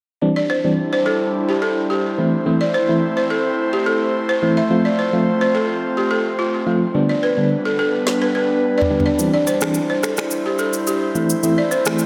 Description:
afrobeats; 107 BPM; 4/4; straight; C major; A4 = 440 Hz
FM electric piano with tremolo; accompaniment; 0.2-12.0 s; D3 to F4; -22 LUFS; equal
airy breathy pad; sustained chords; 0.2-12.1 s; G3 to C5; -24 LUFS; equal; chorus
balafon; riff; 0.4-11.8 s; F4 to E5; -23 LUFS; equal; diffuse ambient delay
afro-pop drum kit; drums; 8.1-12.1 s; finger snaps, rim click, shaker, snare drum, toms; -27 LUFS; equal
wet lush hall reverb, RT60 2.1 s; dreamy mix soaked in reverb; -19 LUFS; mono
0.2-12.1 A section
drum fill 8.1-9.2
0.2 Cadd9; 4.7 F; 6.9 G; 9.2 Cadd9

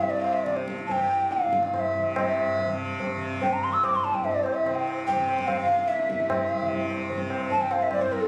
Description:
indian classical, Hindustani; 145 BPM; 5/4; straight; C raga khamaj; A4 = 440 Hz
breathy hollow bansuri; melody; 0.0-8.3 s; A4 to E6; -27 LUFS; equal
tanpura; drone; 0.0-8.3 s; C2 to C3; -34 LUFS; equal
tabla; percussion; 0.0-8.3 s; -34 LUFS; equal
moderate recital hall reverb, RT60 1.3 s; recorded on a phone in the room, club reverb, compression; -26 LUFS; mono
0.0-2.2 A section; 2.2-8.3 B section
speeding up 0.0-8.3

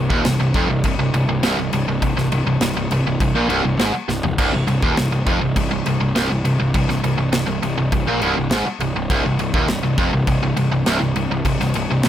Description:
heavy metal; 102 BPM; 4/4; straight; C minor; A4 = 440 Hz
tight distorted guitar; riff; 0.0-12.1 s; C2 to Bb2; -19 LUFS; equal; distortion
fuzz picked electric bass; bass; 0.0-12.1 s; C1 to Bb1; -24 LUFS; equal; overdrive
modern studio drum kit; drums; 0.1-12.1 s; crash cymbal, kick drum, snare drum, toms; -23 LUFS; equal
light reverb; -16 LUFS; side -11 dB against mid
0.0-12.1 A section
drum fill 4.1

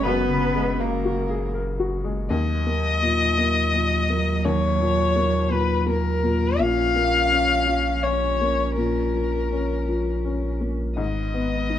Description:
neoclassical piano and strings; 83 BPM; 3/4; rubato; Eb minor; A4 = 441 Hz
muted violin; melody; 0.0-11.8 s; Bb4 to F5; -24 LUFS; left 4 dB
muted cello; second line; 0.0-11.8 s; Gb3 to Db4; -29 LUFS; right 6 dB
warm upright piano; accompaniment; 0.0-11.8 s; Eb2 to Bb4; -26 LUFS; left 3 dB
saturated sub bass; bass; 0.0-11.8 s; Gb1 to Eb2; -26 LUFS; equal
light reverb; -20 LUFS; side -10 dB against mid
0.0-2.3 A section; 2.3-11.8 A section
0.0 Gbadd9; 2.3 Ebm; 6.6 Bbm; 11.0 Abm

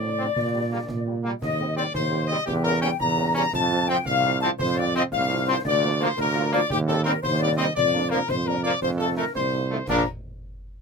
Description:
military-style march for wind band; 114 BPM (dotted quarters); 6/8; straight; Bb major; A4 = 440 Hz
mellow trumpet section; melody; 0.0-10.0 s; G4 to Bb5; -28 LUFS; left 1 dB
mellow flute section; second line; 0.0-10.1 s; G4 to Bb5; -26 LUFS; left 6 dB
dark French horn section; accompaniment; 0.0-10.0 s; F3 to G4; -31 LUFS; equal
warm tuba; bass; 0.0-10.0 s; Bb1 to Bb2; -26 LUFS; right 4 dB
bright trombone section; sustained chords; 0.2-10.0 s; Eb3 to D4; -27 LUFS; right 1 dB
concert snare drum, concert bass drum and clash cymbals; drums; 0.4-10.1 s; -35 LUFS; equal
light reverb; minimal, uncompressed stereo recording; -21 LUFS; side -5 dB against mid
0.0-9.9 A section
0.4 Gm/Bb; 1.4 Cm/Eb; 2.5 Edim7; 3.5 F; 5.6 Bb/D; 6.7 Cm/Eb; 7.8 Bb/F; 8.8 F7; 9.9 Bb

